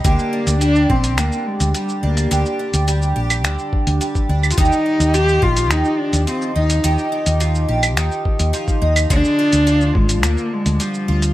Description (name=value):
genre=folktronica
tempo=106 BPM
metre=4/4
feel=straight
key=unclear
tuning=A4 = 440 Hz
part: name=dark cello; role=melody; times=0.0-11.3 s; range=G3 to G4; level=-19 LUFS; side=equal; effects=vintage 12-bit sampler grit, plate reverb
part: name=picked twelve-string acoustic guitar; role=arpeggios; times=0.0-11.3 s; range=D3 to Ab4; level=-22 LUFS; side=right 1 dB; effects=analog chorus, plate reverb, tape echo
part: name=hollow-body short-scale fingered electric bass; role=bass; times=0.0-11.3 s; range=Ab1 to Eb2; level=-18 LUFS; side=equal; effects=none
part: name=electronic kick drum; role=drums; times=0.0-10.1 s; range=none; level=-18 LUFS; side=equal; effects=studio ambience
part: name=lo-fi sampler-style drum kit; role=drums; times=0.0-11.3 s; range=claves, finger snaps, hi-hat, shaker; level=-22 LUFS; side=right 1 dB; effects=studio ambience
room=light reverb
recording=none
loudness=-15 LUFS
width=side -15 dB against mid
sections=0.0-11.3 A section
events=none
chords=0.0 Gm; 4.6 Ebadd9; 9.1 Ddim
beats=| 0.05 0.61 1.18 1.75 | 2.31 2.88 3.44 4.01 | 4.58 5.14 5.71 6.27 | 6.84 7.41 7.97 8.54 | 9.10 9.67 10.23 10.80